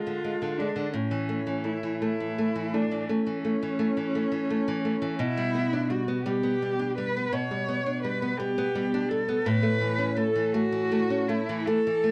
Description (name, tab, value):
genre	romantic duo for cello and classical guitar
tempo	56 BPM (dotted quarters)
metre	12/8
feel	rubato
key	unclear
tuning	A4 = 444 Hz
part	dark cello	melody	0.0-12.1 s	C#4 to C#5	-31 LUFS	equal	none
part	nylon-string guitar	accompaniment	0.0-12.1 s	A2 to D4	-30 LUFS	equal	none
room	little or no reverb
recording	dry, close 1970s-style studio recording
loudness	-28 LUFS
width	mono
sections	0.0-12.1 A section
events	none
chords	0.0 Bb7 (rootless); 0.9 A; 5.2 G/B; 9.5 A